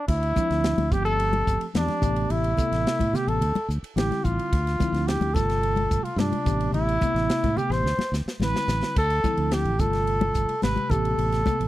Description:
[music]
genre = electric jazz fusion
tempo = 108 BPM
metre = 4/4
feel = straight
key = unclear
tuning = A4 = 439 Hz
[part]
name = mellow trumpet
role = melody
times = 0.0-11.7 s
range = D4 to C5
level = -26 LUFS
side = equal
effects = none
[part]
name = fingered electric bass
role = bass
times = 0.1-11.7 s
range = G1 to A2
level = -26 LUFS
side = equal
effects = none
[part]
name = crisp fusion drum kit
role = drums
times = 0.1-11.7 s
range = crash cymbal, hi-hat, kick drum, ride cymbal, snare drum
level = -28 LUFS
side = equal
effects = none
[part]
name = tine electric piano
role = accompaniment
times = 0.4-11.7 s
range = C3 to A4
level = -30 LUFS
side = equal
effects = medium stereo tremolo
[part]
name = congas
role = percussion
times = 0.4-11.6 s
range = none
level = -29 LUFS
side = left 4 dB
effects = none
[sound]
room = light reverb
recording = dry, close 1970s-style studio recording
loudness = -22 LUFS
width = side -15 dB against mid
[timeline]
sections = 0.1-11.7 A section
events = drum fill 7.9-9.0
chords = 0.1 Dm9; 0.9 G9sus4; 2.0 Am9; 3.4 D9sus4; 4.5 Dm9; 5.4 G9sus4; 6.5 Am9; 7.9 D9sus4; 9.0 Dm9; 9.8 G9sus4; 10.9 Am9

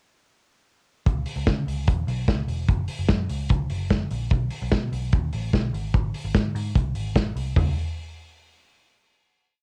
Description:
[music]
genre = jangly indie pop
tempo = 148 BPM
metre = 4/4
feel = straight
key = C# minor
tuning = A4 = 440 Hz
[part]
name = vintage muted picked electric bass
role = bass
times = 1.1-7.7 s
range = E1 to C#3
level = -30 LUFS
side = equal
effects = none
[part]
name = modern studio drum kit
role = drums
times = 1.1-7.7 s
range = hi-hat, kick drum, snare drum, toms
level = -26 LUFS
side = equal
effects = cassette tape
[sound]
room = little or no reverb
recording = home recording on cassette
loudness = -25 LUFS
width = mono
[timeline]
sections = 1.1-7.6 verse; 7.6-9.2 final note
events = none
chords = none

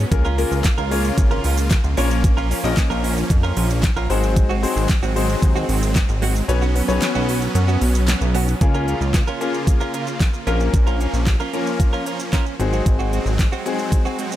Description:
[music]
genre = dance-pop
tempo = 113 BPM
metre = 4/4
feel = straight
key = Db major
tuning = A4 = 440 Hz
[part]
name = supersaw chords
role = sustained chords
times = 0.0-14.4 s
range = Db3 to F4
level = -27 LUFS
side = right 1 dB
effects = sidechain pumping
[part]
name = direct-recorded clean electric guitar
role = riff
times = 0.0-14.4 s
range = Ab3 to Bb4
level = -28 LUFS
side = right 6 dB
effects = lush chorus
[part]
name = chorused synth bass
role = bass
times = 0.0-13.5 s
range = Ab1 to Gb2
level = -20 LUFS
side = equal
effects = sidechain pumping
[part]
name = clear baby grand piano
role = accompaniment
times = 0.1-14.1 s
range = Bb3 to Eb5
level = -25 LUFS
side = left 6 dB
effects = sidechain pumping
[part]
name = pop drum kit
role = drums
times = 0.1-14.4 s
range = handclaps, hi-hat, kick drum, shaker, snare drum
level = -20 LUFS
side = equal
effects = none
[part]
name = group handclap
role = percussion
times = 0.6-8.2 s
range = none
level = -36 LUFS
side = left 4 dB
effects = none
[sound]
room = little or no reverb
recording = none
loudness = -17 LUFS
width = side -13 dB against mid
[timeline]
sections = 0.0-8.6 A section; 8.6-14.4 B section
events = kick muted 6.5-8.6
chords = 0.1 Db6; 2.0 Bbm; 4.1 Ab7; 6.5 Cbsus2; 8.6 Db6; 10.5 Bbm; 12.6 Ab7

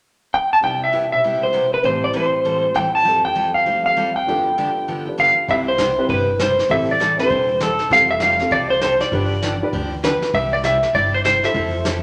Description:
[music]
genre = country, western swing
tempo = 198 BPM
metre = 4/4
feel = swing 61% on 8ths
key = C major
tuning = A4 = 438 Hz
[part]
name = clean lap steel guitar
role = melody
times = 0.3-12.0 s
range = A4 to A5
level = -19 LUFS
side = equal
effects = none
[part]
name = honky-tonk upright piano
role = accompaniment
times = 0.6-11.8 s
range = F2 to C5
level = -29 LUFS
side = equal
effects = none
[part]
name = picked steel-string acoustic guitar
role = accompaniment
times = 0.6-12.0 s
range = G2 to A4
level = -30 LUFS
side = equal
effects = none
[part]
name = upright bass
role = bass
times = 5.5-12.0 s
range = E1 to F2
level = -29 LUFS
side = equal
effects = none
[part]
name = vintage brush drum kit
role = drums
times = 5.5-12.0 s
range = brushed snare drum, hi-hat, kick drum, snare drum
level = -30 LUFS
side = equal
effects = none
[sound]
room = wet large studio reverb, RT60 1.4 s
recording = none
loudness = -18 LUFS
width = mono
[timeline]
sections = 0.6-5.5 A section; 5.5-12.0 B section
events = none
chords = 0.0 N.C.; 0.6 Cmaj7; 1.8 Am7; 3.1 Fadd9; 4.3 G7; 5.5 Cmaj7; 6.7 Am7; 7.9 Fadd9; 9.1 G7; 10.3 C

